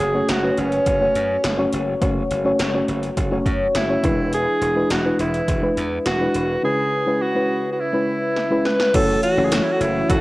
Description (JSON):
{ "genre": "1980s-style pop", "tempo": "104 BPM", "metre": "4/4", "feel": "straight", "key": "F# minor", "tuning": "A4 = 442 Hz", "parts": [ { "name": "breathy alto saxophone", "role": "melody", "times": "0.0-10.2 s", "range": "C#4 to B4", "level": "-22 LUFS", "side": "right 1 dB", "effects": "cassette tape" }, { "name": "mellow FM electric piano", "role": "accompaniment", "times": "0.0-10.2 s", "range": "C#3 to C#5", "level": "-21 LUFS", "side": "left 1 dB", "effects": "chorus, cassette tape" }, { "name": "glassy slap bass", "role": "bass", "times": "0.0-10.2 s", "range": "E1 to F#2", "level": "-27 LUFS", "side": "equal", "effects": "none" }, { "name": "80s electronic pad drums", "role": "drums", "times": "0.0-10.2 s", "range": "crash cymbal, hi-hat, kick drum, snare drum, tambourine", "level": "-25 LUFS", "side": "equal", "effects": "cassette tape" }, { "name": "lush unison pad", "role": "sustained chords", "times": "9.0-10.2 s", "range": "E3 to F#4", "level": "-28 LUFS", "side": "right 1 dB", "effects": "chorus, cassette tape" }, { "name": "funky polysynth comp", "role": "stabs", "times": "10.1-10.2 s", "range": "F#3 to A4", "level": "-23 LUFS", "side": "right 2 dB", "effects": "chorus, cassette tape" } ], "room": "wet spring reverb, RT60 2.0 s", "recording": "home recording on cassette", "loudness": "-18 LUFS", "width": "side -19 dB against mid", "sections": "0.0-8.9 A section; 8.9-10.2 B section", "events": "drum fill 8.4-8.9", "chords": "0.0 F#m; 4.0 E7; 6.6 C#m7; 8.9 F#m7" }